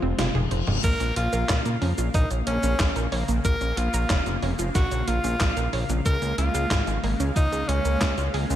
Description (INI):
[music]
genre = synthwave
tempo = 92 BPM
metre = 4/4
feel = straight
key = Bb minor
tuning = A4 = 440 Hz
[part]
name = warm analog pad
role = sustained chords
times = 0.0-8.6 s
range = C3 to F5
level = -32 LUFS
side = left 2 dB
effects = chorus, vintage 12-bit sampler grit, sidechain pumping
[part]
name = wide unison pluck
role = arpeggios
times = 0.0-8.6 s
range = Ab3 to Db5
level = -33 LUFS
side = right 4 dB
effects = ping-pong delay
[part]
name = fat analog bass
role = bass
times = 0.0-8.6 s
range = F1 to Bb2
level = -26 LUFS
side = equal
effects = tube saturation, sidechain pumping
[part]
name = reverse cymbal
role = sound effects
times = 0.4-0.8 s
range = none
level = -35 LUFS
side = left 6 dB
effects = none
[part]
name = gated 80s digital drum machine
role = drums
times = 0.2-8.6 s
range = cabasa, crash cymbal, handclaps, hi-hat, snare drum, toms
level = -29 LUFS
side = equal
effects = gated reverb, gated reverb snare
[part]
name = bright tenor saxophone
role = melody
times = 0.8-8.3 s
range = Db4 to Bb4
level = -29 LUFS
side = equal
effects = ping-pong delay
[part]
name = electronic kick drum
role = drums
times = 0.8-8.1 s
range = none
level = -24 LUFS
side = equal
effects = none
[sound]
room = light reverb, digital ambience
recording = none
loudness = -22 LUFS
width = side -11 dB against mid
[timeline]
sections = 0.8-8.6 A section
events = drum fill 0.0-0.8; reverse cymbal 0.4-0.8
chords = 0.0 Fm; 0.8 Bbm; 6.1 Db6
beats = 0.19 | 0.84 1.49 2.14 2.80 | 3.45 4.10 4.75 5.41 | 6.06 6.71 7.36 8.01